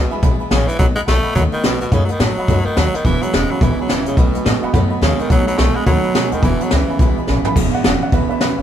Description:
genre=rockabilly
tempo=213 BPM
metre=4/4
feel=swing 61% on 8ths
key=E major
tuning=A4 = 440 Hz
part: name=raspy tenor saxophone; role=melody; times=0.0-7.2 s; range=B2 to A3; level=-21 LUFS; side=equal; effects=none
part: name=dark upright piano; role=accompaniment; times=0.0-8.6 s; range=G#3 to B5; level=-27 LUFS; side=right 2 dB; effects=none
part: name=picked steel-string acoustic guitar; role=accompaniment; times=0.0-8.6 s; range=E2 to F#4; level=-28 LUFS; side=left 6 dB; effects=none
part: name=upright bass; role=bass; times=0.0-8.6 s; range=E1 to A2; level=-19 LUFS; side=equal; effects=none
part: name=jazz brush drum kit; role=drums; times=0.2-8.5 s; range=crash cymbal, hi-hat, kick drum, snare drum, toms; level=-18 LUFS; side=equal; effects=none
part: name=electric guitar through a small old amp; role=riff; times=3.0-8.6 s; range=E2 to G#3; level=-21 LUFS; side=right 5 dB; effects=warbly pitch drift
room=light reverb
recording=band playing live in one room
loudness=-13 LUFS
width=side -10 dB against mid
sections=0.0-7.6 A section; 7.6-8.6 B section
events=drum fill 7.3; upright piano solo 7.6-8.6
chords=0.0 E; 0.8 B7; 3.1 E; 4.2 B7; 6.4 E

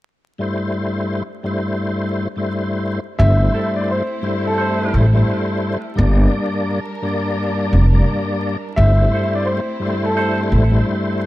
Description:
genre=hip hop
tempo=86 BPM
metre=4/4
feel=swing 63% on 16ths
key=unclear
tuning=A4 = 440 Hz
part: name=tonewheel organ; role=accompaniment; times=0.4-11.3 s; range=G2 to D5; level=-20 LUFS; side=left 1 dB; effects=overdrive, chorus vibrato, fast rotary speaker, cassette tape, high-pass filter, low-pass filter
part: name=dark upright piano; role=melody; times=3.2-11.3 s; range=A4 to E5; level=-23 LUFS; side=equal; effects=high-pass filter, low-pass filter, tape echo
part: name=warm studio string section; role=sustained chords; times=3.2-11.3 s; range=G3 to Bb4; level=-29 LUFS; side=right 1 dB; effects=high-pass filter, low-pass filter
part: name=upright bass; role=bass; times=3.2-10.8 s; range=F1 to A1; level=-14 LUFS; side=equal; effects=none
part: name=mellow horn section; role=stabs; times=3.5-10.4 s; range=C4 to C5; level=-28 LUFS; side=right 3 dB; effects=high-pass filter, low-pass filter, tape echo
room=small room ambience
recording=dark, warm production, vinyl crackle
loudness=-16 LUFS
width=side -16 dB against mid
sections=0.4-3.2 A section; 3.2-11.3 B section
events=none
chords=0.4 Am/G; 6.0 Gm; 8.8 Am/G

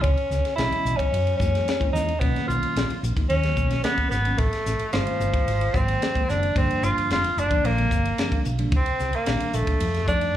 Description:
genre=electric jazz fusion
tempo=111 BPM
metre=4/4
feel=straight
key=unclear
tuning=A4 = 438 Hz
part: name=clear tenor saxophone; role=melody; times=0.0-10.4 s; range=F3 to F4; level=-24 LUFS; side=equal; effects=slapback echo
part: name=bell-like tine electric piano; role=accompaniment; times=0.0-10.4 s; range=C3 to Eb5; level=-30 LUFS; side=left 1 dB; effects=wide subtle chorus, slapback echo
part: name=hollow-body short-scale fingered electric bass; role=bass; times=0.0-10.3 s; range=F1 to Gb2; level=-25 LUFS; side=equal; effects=none
part: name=tight funk drum kit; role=drums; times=0.0-10.3 s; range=hi-hat, kick drum, ride cymbal, snare drum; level=-28 LUFS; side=equal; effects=none
room=small room ambience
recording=live gig heard through the venue's PA, club reverb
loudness=-21 LUFS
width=side -12 dB against mid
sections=0.0-10.4 A section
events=none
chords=0.0 Dbm7; 1.1 Gb13; 2.2 Bmaj9; 4.4 Am7b5; 5.5 Ab9; 6.6 Gm7; 8.7 Cm7; 9.8 F7

